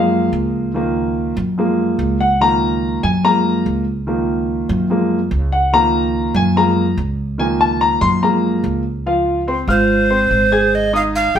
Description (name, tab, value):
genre	Afro-Cuban jazz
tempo	144 BPM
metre	4/4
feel	straight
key	Db major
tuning	A4 = 437 Hz
part	warm baby grand piano	accompaniment	0.0-11.4 s	Eb3 to Ab6	-16 LUFS	equal	none
part	upright bass	bass	0.0-11.4 s	G1 to Gb2	-20 LUFS	equal	none
part	breathy tenor recorder	melody	9.7-11.4 s	C5 to G5	-15 LUFS	right 1 dB	none
room	wet studio reverb, RT60 0.7 s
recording	band playing live in one room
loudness	-14 LUFS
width	side -8 dB against mid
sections	0.0-9.1 A section; 9.1-11.4 B section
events	grand piano solo 0.0-9.1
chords	0.0 Gbmaj7; 0.7 Db6; 1.6 Gbmaj7; 2.4 Db6; 3.2 Gbmaj7; 4.1 Db6; 4.9 Gbmaj7; 5.7 Db6; 6.6 Gbmaj7; 7.4 Db6; 8.2 Gbmaj7; 9.1 Dbmaj7; 10.7 Ab5